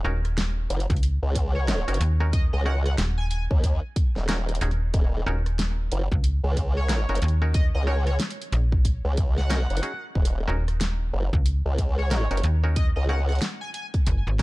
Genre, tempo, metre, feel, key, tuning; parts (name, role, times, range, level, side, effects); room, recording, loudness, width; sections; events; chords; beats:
glitch hop; 92 BPM; 4/4; swing 61% on 16ths; Eb minor; A4 = 439 Hz
muted clav; stabs; 0.0-14.4 s; Db4 to Bb4; -34 LUFS; equal; sidechain pumping, tape echo
formant-sweep wobble bass; bass; 0.0-13.4 s; Eb1 to Eb2; -24 LUFS; equal; chorus, tube saturation
slap-like FM bass; bass; 0.0-14.4 s; Eb1 to Eb2; -23 LUFS; equal
pop drum kit; drums; 0.2-14.4 s; hi-hat, rim click, snare drum; -31 LUFS; equal; small room ambience
electronic kick drum; drums; 0.9-14.4 s; -23 LUFS; equal; small room ambience
sync lead; melody; 1.6-13.9 s; Db5 to Ab5; -35 LUFS; equal; lush chorus, tape echo
little or no reverb; dark, warm production; -22 LUFS; side -20 dB against mid
0.0-14.4 A section
0.0 Ebm7
0.37 1.02 1.68 | 2.33 2.98 3.63 4.29 | 4.94 5.59 6.24 6.89 | 7.55 8.20 8.85 9.50 | 10.16 10.81 11.46 12.11 | 12.76 13.42 14.07